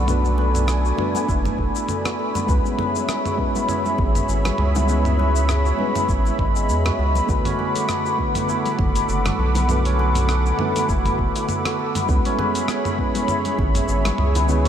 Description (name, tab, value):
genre	organic downtempo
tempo	100 BPM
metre	4/4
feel	swing 56% on 16ths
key	B dorian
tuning	A4 = 440 Hz
part	tine electric piano	accompaniment	0.0-14.7 s	D3 to B4	-26 LUFS	equal	overdrive, fast stereo tremolo, sidechain pumping, diffuse ambient delay
part	warm analog pad	sustained chords	0.0-14.7 s	G#4 to D6	-27 LUFS	right 2 dB	chorus, sidechain pumping
part	santur	arpeggios	0.0-14.7 s	G#3 to B4	-25 LUFS	left 2 dB	diffuse ambient delay
part	round analog bass	bass	0.0-14.7 s	F#1 to E2	-20 LUFS	equal	none
part	dusty soul sampler-style drum kit	drums	0.1-14.7 s	hi-hat, rim click, shaker, toms	-28 LUFS	equal	small room ambience
part	congas	percussion	0.3-14.7 s	none	-33 LUFS	left 3 dB	none
part	electronic kick drum	drums	1.3-13.7 s	none	-23 LUFS	equal	overdrive, small room ambience
room	moderate huge ambient reverb, RT60 8.5 s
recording	dreamy mix soaked in reverb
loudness	-18 LUFS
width	side -9 dB against mid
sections	0.0-14.7 A section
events	none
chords	0.0 Bm7; 2.5 C#m7; 7.3 Bm7; 12.1 C#m7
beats	| 0.09 0.69 1.29 1.89 | 2.49 3.09 3.69 4.29 | 4.89 5.49 6.09 6.69 | 7.29 7.89 8.49 9.09 | 9.69 10.29 10.89 11.49 | 12.09 12.69 13.29 13.89 | 14.49